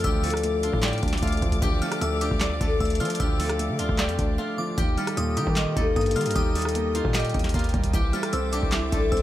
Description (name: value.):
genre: hip hop, trap.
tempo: 152 BPM.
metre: 4/4.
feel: half-time.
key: D minor.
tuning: A4 = 440 Hz.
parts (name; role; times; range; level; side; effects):
steel-string zither; melody; 0.0-9.2 s; A3 to G5; -29 LUFS; left 4 dB; tape echo.
glassy synth bell; second line; 0.0-9.2 s; D6 to F6; -34 LUFS; left 2 dB; chorus, tape echo.
felt-muted upright piano; accompaniment; 0.0-9.2 s; Bb2 to Eb5; -30 LUFS; right 3 dB; none.
warm studio string section; sustained chords; 0.0-9.2 s; G4 to D6; -37 LUFS; left 2 dB; none.
hard-hitting 808-style bass; bass; 0.0-9.2 s; C2 to F3; -28 LUFS; equal; none.
booming analog drum machine; drums; 0.0-9.2 s; handclaps, hi-hat, kick drum, rim click, snare drum; -26 LUFS; equal; none.
room: small room reverb.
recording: none.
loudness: -22 LUFS.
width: side -13 dB against mid.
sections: 0.0-9.2 A section.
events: break 4.4-4.8.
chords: 0.0 Dm; 4.8 Eb; 7.9 Cadd9.